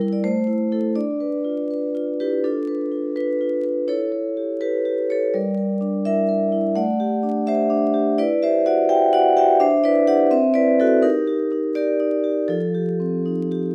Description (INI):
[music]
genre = classical, contemporary piece for solo vibraphone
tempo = 83 BPM (dotted quarters)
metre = 6/8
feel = straight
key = D minor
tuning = A4 = 441 Hz
[part]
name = vibraphone with medium mallets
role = solo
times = 0.0-13.7 s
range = F3 to G5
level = -20 LUFS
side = equal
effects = none
[sound]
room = moderate stone room reverb, RT60 1.1 s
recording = vinyl crackle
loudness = -20 LUFS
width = mono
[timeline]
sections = 0.0-2.4 A section; 2.4-13.7 B section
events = none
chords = 0.2 Am; 1.0 Dm6; 3.9 Emadd11; 5.3 Gm6; 6.8 Am7; 8.2 Em9; 9.6 D9sus4; 10.3 Cmaj7#11; 11.0 Ebmaj7; 12.5 F9